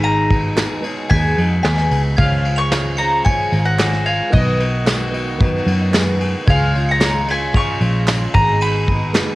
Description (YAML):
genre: indie folk with a building arrangement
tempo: 112 BPM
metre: 4/4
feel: straight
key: unclear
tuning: A4 = 441 Hz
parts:
  - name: mandolin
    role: melody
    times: 0.0-9.4 s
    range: D#5 to C#6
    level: -21 LUFS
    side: left 1 dB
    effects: cassette tape, tape echo
  - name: glockenspiel with brass mallets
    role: second line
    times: 0.0-9.4 s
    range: F#6 to E#7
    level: -28 LUFS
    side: right 2 dB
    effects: cassette tape
  - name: picked twelve-string acoustic guitar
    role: accompaniment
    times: 0.0-9.4 s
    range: G#2 to B4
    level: -26 LUFS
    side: left 1 dB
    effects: cassette tape
  - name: warm upright piano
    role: accompaniment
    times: 0.0-9.4 s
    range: G#1 to G#5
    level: -30 LUFS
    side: right 4 dB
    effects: cassette tape
  - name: pedal harmonium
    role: sustained chords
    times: 0.0-9.4 s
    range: B2 to F#4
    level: -30 LUFS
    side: right 1 dB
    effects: cassette tape
  - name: picked electric bass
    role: bass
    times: 0.0-9.2 s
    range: G#1 to F#2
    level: -18 LUFS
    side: equal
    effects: none
  - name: soft brush drum kit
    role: drums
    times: 0.3-9.3 s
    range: kick drum, ride cymbal, snare drum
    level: -19 LUFS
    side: equal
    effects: cassette tape
  - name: group handclap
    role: percussion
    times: 0.6-9.3 s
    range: none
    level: -27 LUFS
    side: right 5 dB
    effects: none
  - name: tambourine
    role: percussion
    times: 0.6-9.3 s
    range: none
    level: -35 LUFS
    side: left 10 dB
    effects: none
room: light reverb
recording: home recording on cassette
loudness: -14 LUFS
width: side -18 dB against mid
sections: 0.0-9.4 A section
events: upright piano fill 5.4-6.5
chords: 0.0 G#m; 2.2 C#; 4.3 B; 6.5 C#; 8.3 G#m